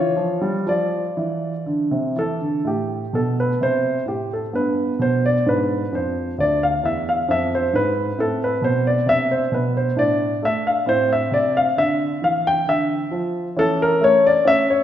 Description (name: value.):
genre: classical, baroque-style suite movement for grand piano.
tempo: 66 BPM.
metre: 3/4.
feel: uneven beats, rubato.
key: A minor.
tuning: A4 = 440 Hz.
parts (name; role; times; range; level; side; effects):
warm baby grand piano; solo; 0.0-14.8 s; D2 to G5; -18 LUFS; equal; none.
room: wet recital hall reverb, RT60 1.7 s.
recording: heard from further back in the room.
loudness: -18 LUFS.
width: side -10 dB against mid.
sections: 0.0-2.6 A section; 2.6-14.8 A section.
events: none.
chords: 0.0 Dm; 2.6 Am; 4.5 G; 5.5 E7; 8.2 Am; 10.0 D5/A; 10.9 Am; 13.6 A/E.